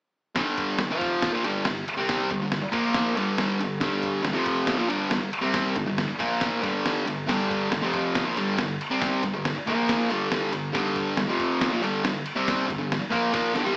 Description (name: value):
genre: garage rock duo or trio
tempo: 139 BPM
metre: 4/4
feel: straight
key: G minor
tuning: A4 = 440 Hz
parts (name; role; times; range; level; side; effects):
- fuzz guitar; riff; 0.4-13.8 s; F2 to C4; -24 LUFS; equal; distortion
- lo-fi sampler-style drum kit; drums; 0.4-13.8 s; crash cymbal, kick drum, ride cymbal, snare drum; -29 LUFS; equal; none
room: moderate large studio reverb, RT60 1.1 s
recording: band playing live in one room, small speaker sound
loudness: -23 LUFS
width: side -34 dB against mid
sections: 0.4-13.8 A section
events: drum fill 13.3-13.8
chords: 0.4 G5; 0.9 F5; 1.3 G5; 2.7 Bb5; 3.2 G5; 4.4 F5; 4.8 G5; 6.2 Bb5; 6.6 G5; 7.8 F5; 8.3 G5; 9.7 Bb5; 10.1 G5; 11.3 F5; 11.7 Gm